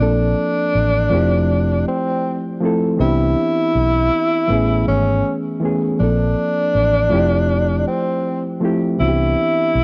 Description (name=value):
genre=hip hop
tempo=80 BPM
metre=4/4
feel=swing 55% on 16ths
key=unclear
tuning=A4 = 440 Hz
part: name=mellow tenor saxophone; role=melody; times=0.0-9.8 s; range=C4 to E4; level=-21 LUFS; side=equal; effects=low-pass filter
part: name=reed electric piano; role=accompaniment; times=0.0-9.8 s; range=E3 to A4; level=-22 LUFS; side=equal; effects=low-pass filter, cassette tape
part: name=vintage muted fingered electric bass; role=bass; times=0.0-9.8 s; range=F1 to C2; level=-21 LUFS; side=equal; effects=none
room=light reverb, small room ambience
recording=home recording on cassette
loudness=-18 LUFS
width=mono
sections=0.0-9.8 A section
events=none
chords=0.0 Bbmaj9; 1.1 Fmaj9; 3.0 Cmaj9; 4.5 Amaj9; 6.0 Bbmaj9; 7.1 Fmaj9; 9.0 Cmaj9